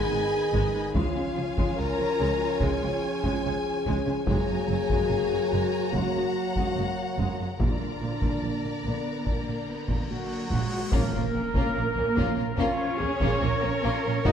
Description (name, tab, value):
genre	cinematic, epic orchestral film score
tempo	72 BPM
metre	4/4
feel	straight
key	unclear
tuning	A4 = 439 Hz
part	rich symphonic violin section	melody	0.0-14.3 s	Db4 to Bb5	-36 LUFS	left 3 dB	none
part	warm symphonic violin section	second line	0.0-14.3 s	Bb3 to Cb6	-35 LUFS	left 2 dB	none
part	warm symphonic viola section	accompaniment	0.0-14.3 s	F3 to Gb4	-34 LUFS	equal	none
part	warm French horn section	sustained chords	0.0-14.3 s	Bb3 to Bb4	-30 LUFS	left 3 dB	none
part	warm trombone section	sustained chords	0.0-14.3 s	Bb2 to D4	-35 LUFS	right 3 dB	none
part	warm symphonic cello section	bass	0.1-14.3 s	Gb2 to Bb4	-34 LUFS	right 2 dB	none
part	warm symphonic double bass section	bass	0.1-14.3 s	Gb1 to Db2	-32 LUFS	right 3 dB	none
part	taiko ensemble	drums	0.5-14.3 s	none	-30 LUFS	equal	none
part	cymbal swell and impact	sound effects	9.7-14.3 s	none	-39 LUFS	equal	none
part	flute section	second line	10.1-14.3 s	Gb4 to Eb5	-34 LUFS	right 1 dB	none
part	warm trumpet section	stabs	10.1-14.3 s	Gb4 to Eb5	-32 LUFS	right 1 dB	none
room	moderate scoring stage reverb, RT60 1.5 s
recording	dark, warm production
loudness	-24 LUFS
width	side -8 dB against mid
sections	0.0-10.9 A section; 10.9-14.3 B section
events	cymbal swell 9.7-10.9; impact 10.9-14.3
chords	0.0 Abm; 1.0 Db; 4.3 Gbadd9; 7.6 Bb; 10.9 Bbm